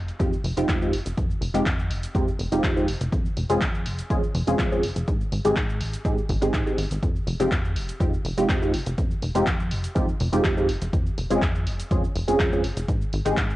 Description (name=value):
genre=filtered disco house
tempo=123 BPM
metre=4/4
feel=straight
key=F minor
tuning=A4 = 439 Hz
part: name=plucky analog bass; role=bass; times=0.0-13.6 s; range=F1 to Ab2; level=-28 LUFS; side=equal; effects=sidechain pumping, low-pass filter
part: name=punchy analog drum machine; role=drums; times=0.1-13.6 s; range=cabasa, handclaps, hi-hat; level=-32 LUFS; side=equal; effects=sidechain pumping on hats, small room ambience, cassette tape, sidechain pumping on cymbals, sidechain pumping on perc
part: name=egg shaker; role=percussion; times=0.1-13.6 s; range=none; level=barely audible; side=none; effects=none
part: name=funky polysynth comp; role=accompaniment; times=0.2-13.4 s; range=Ab3 to Ab4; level=-24 LUFS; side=equal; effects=chorus, phaser, sidechain pumping, low-pass filter, cassette tape
part: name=electronic kick drum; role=drums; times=0.2-13.5 s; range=none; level=-26 LUFS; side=equal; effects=small room ambience, cassette tape
room=light reverb, digital ambience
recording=home recording on cassette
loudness=-22 LUFS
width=side -16 dB against mid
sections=0.0-13.6 A section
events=none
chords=0.0 Fm9; 2.9 Dbmaj7/F; 5.1 Abmaj7; 7.0 Fm9; 10.7 Dbmaj7/F; 12.9 Abmaj7